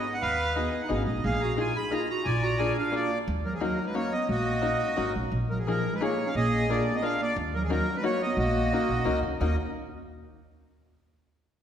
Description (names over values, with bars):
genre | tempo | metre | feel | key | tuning
musette waltz | 177 BPM | 3/4 | straight | Eb minor | A4 = 439 Hz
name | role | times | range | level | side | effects
accordion | melody | 0.0-9.6 s | Gb4 to Cb6 | -29 LUFS | right 1 dB | none
open-back banjo | accompaniment | 0.0-9.6 s | Bb3 to Ab4 | -32 LUFS | left 4 dB | none
upright bass | bass | 0.2-9.6 s | Ab1 to Eb2 | -31 LUFS | equal | none
warm clarinet | second line | 0.6-9.6 s | F3 to Ab4 | -32 LUFS | right 1 dB | none
room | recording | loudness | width
wet scoring stage reverb, RT60 1.9 s | recorded in a church or concert hall | -25 LUFS | side -9 dB against mid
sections
0.0-5.3 A section; 5.3-9.4 B section; 9.4-10.4 C section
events
none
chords
0.0 Abm7; 1.2 Bb7sus4; 2.3 Bb7; 3.3 Ebm7; 5.3 Bb7sus4; 6.3 Bb7; 7.4 Ebm7